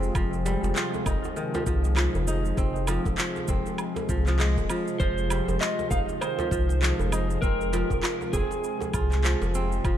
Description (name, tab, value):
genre	organic downtempo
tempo	99 BPM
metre	4/4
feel	swing 59% on 16ths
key	F minor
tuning	A4 = 443 Hz
part	warm analog pad	sustained chords	0.0-10.0 s	C3 to Ab4	-33 LUFS	equal	chorus, sidechain pumping
part	kora	arpeggios	0.0-10.0 s	Eb3 to F4	-31 LUFS	equal	analog delay
part	round analog bass	bass	0.0-10.0 s	Eb1 to C2	-26 LUFS	equal	sidechain pumping
part	electronic shaker, woodblock and handclaps	drums	0.0-10.0 s	none	-33 LUFS	equal	dub echo
part	electronic kick drum	drums	0.1-10.0 s	none	-29 LUFS	equal	none
part	djembe	percussion	0.2-10.0 s	none	-39 LUFS	right 3 dB	dub echo
part	electric slide guitar	melody	5.0-9.5 s	Ab4 to F5	-30 LUFS	right 2 dB	analog delay
room	light reverb, digital ambience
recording	echo-heavy mix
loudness	-24 LUFS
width	side -11 dB against mid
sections	0.0-10.0 A section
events	none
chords	0.0 Fm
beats	| 0.15 0.76 1.36 1.97 | 2.57 3.18 3.79 4.39 | 5.00 5.61 6.21 6.82 | 7.42 8.03 8.63 9.24 | 9.85